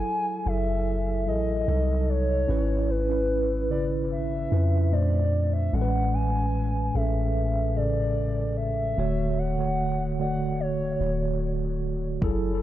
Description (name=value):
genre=contemporary R&B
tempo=74 BPM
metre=4/4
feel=straight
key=unclear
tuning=A4 = 443 Hz
part: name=hollow clarinet-like synth lead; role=melody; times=0.0-11.4 s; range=B4 to G#5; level=-30 LUFS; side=equal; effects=chorus, dub echo
part: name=mellow tine electric piano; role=accompaniment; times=0.0-12.6 s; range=A2 to D5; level=-28 LUFS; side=right 1 dB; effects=medium stereo tremolo, dub echo
part: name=soft 808-style bass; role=bass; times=0.0-12.6 s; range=D1 to E#2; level=-27 LUFS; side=equal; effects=none
part: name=electronic kick drum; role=drums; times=12.2-12.4 s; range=none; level=-27 LUFS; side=equal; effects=vintage 12-bit sampler grit
room=light reverb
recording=echo-heavy mix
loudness=-23 LUFS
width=side -13 dB against mid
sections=0.0-12.6 A section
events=none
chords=0.0 F#m9; 1.7 Cdim7; 2.5 C#m7/G#; 4.9 A#maj9; 5.7 Amaj9; 9.0 Dmaj7